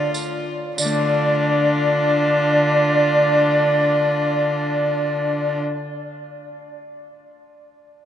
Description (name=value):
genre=classical, renaissance-style consort dance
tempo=free time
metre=none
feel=none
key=D minor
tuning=A4 = 440 Hz
part: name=warm violin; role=melody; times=0.0-5.6 s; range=F4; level=-30 LUFS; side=left 4 dB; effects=none
part: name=mellow hollow tenor recorder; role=second line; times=0.0-5.6 s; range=D5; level=-20 LUFS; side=equal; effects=none
part: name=Celtic harp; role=accompaniment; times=0.0-5.9 s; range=D3 to D5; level=-30 LUFS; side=left 5 dB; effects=none
part: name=warm viola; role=accompaniment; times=0.0-5.6 s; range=D4 to F4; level=-26 LUFS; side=left 3 dB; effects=none
part: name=rich cello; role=bass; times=0.0-5.6 s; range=D3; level=-23 LUFS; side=right 1 dB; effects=none
part: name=tambourine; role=percussion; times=0.1-1.1 s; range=none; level=-28 LUFS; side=right 5 dB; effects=none
room=wet cathedral reverb, RT60 6.2 s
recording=in a vast, echoing space, nothing above 11.0 kHz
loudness=-16 LUFS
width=side -10 dB against mid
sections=0.8-5.9 A section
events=none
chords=0.0 Dm